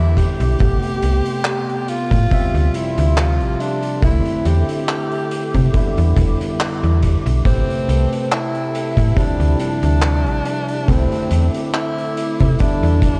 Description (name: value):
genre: vaporwave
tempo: 70 BPM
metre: 4/4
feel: swing 54% on 16ths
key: D dorian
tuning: A4 = 440 Hz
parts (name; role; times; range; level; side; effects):
- clear tenor saxophone; melody; 0.0-13.2 s; C4 to G4; -26 LUFS; equal; tape echo
- overdriven tine electric piano; accompaniment; 0.0-13.2 s; C3 to E5; -26 LUFS; equal; subtle chorus, vintage 12-bit sampler grit, diffuse ambient delay
- warbly tape-like pad; sustained chords; 0.0-13.2 s; B3 to D6; -34 LUFS; equal; chorus, built-in reverb, vintage 12-bit sampler grit
- slap-like FM bass; bass; 0.0-13.2 s; E1 to C3; -18 LUFS; equal; none
- kick drum; drums; 0.2-13.2 s; none; -22 LUFS; equal; vintage 12-bit sampler grit
- oversized low-tuned drum kit; drums; 0.2-13.2 s; handclaps, hi-hat; -31 LUFS; equal; vintage 12-bit sampler grit
room: moderate church reverb, RT60 2.9 s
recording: dreamy mix soaked in reverb, cassette tape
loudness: -18 LUFS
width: mono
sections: 0.0-13.2 A section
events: none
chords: 0.0 Em7; 0.6 Am9; 2.3 Dm11; 4.0 C69; 5.7 Em7; 7.5 Am9; 9.2 Dm11; 10.9 C69; 12.6 Em7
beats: | 0.60 1.46 2.32 3.17 | 4.03 4.89 5.74 6.60 | 7.46 8.32 9.17 10.03 | 10.89 11.74 12.60